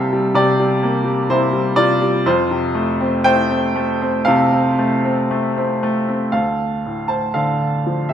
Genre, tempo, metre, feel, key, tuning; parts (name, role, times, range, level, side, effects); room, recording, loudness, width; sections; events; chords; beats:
classical, lyrical solo piano; 57-64 BPM; 4/4; rubato; F major; A4 = 440 Hz
bright upright piano; solo; 0.0-8.1 s; D2 to A5; -15 LUFS; equal
moderate concert hall reverb, RT60 1.7 s; minimal, uncompressed stereo recording; -15 LUFS; side -9 dB against mid
0.0-6.3 A section; 6.3-8.1 B section
0.0 C7; 2.3 Fadd9; 6.3 Dm7
0.36 1.30 | 2.26 3.25 4.26 5.28 | 6.33 7.34